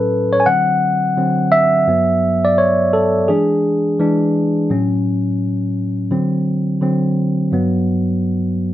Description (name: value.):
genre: R&B.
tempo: 85 BPM.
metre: 4/4.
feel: swing 63% on 16ths.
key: unclear.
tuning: A4 = 440 Hz.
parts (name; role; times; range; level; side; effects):
tine electric piano; solo; 0.0-8.7 s; G2 to G#5; -14 LUFS; equal; none.
room: moderate studio reverb, RT60 0.6 s.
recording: none.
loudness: -14 LUFS.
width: side -13 dB against mid.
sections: 0.0-8.7 A section.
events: tine electric piano solo 0.0-8.7.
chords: 0.5 D7; 1.9 Gmaj7; 3.3 E7; 4.7 A6; 6.1 D7; 7.5 Gmaj7.